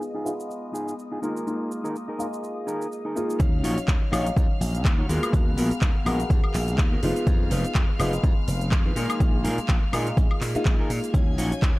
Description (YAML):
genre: filtered disco house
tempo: 124 BPM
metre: 4/4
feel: swing 56% on 16ths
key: Eb minor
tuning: A4 = 439 Hz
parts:
  - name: warm baby grand piano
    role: accompaniment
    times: 0.0-11.8 s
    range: Gb3 to F5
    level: -30 LUFS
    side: left 1 dB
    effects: phaser, sidechain pumping, low-pass filter
  - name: clear studio violin section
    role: sustained chords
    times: 0.0-11.8 s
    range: Eb5 to Ab6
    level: -38 LUFS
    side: left 2 dB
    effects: sidechain pumping, low-pass filter
  - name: house drum kit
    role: drums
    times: 0.0-11.7 s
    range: handclaps, hi-hat, shaker, woodblock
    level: -33 LUFS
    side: left 1 dB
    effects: sidechain pumping on perc, sidechain pumping on hats
  - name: clean electric guitar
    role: riff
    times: 0.1-11.8 s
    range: Cb4 to Db5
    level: -30 LUFS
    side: equal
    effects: vintage 12-bit sampler grit, sidechain pumping, low-pass filter
  - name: slap bass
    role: bass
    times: 3.4-11.7 s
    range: F1 to Bb2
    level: -27 LUFS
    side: equal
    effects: tube saturation, sidechain pumping, low-pass filter
  - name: electronic kick drum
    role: drums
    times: 3.4-11.7 s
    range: none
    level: -22 LUFS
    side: equal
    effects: overdrive
room: digital ambience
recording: dark, warm production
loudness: -22 LUFS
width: side -20 dB against mid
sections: 0.0-3.4 A section; 3.4-11.8 B section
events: filter sweep 0.0-3.4; drop 3.4-11.8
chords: 0.0 Fm7b5; 1.2 Bb7sus4; 3.4 Ebm9; 5.1 Abm9; 7.0 Fm7b5; 9.0 Bb7sus4; 11.1 Ebm9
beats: 0.01 0.50 0.98 | 1.46 1.95 2.43 2.92 | 3.40 3.88 4.37 4.85 | 5.33 5.82 6.30 6.79 | 7.27 7.75 8.24 8.72 | 9.21 9.69 10.17 10.66 | 11.14 11.62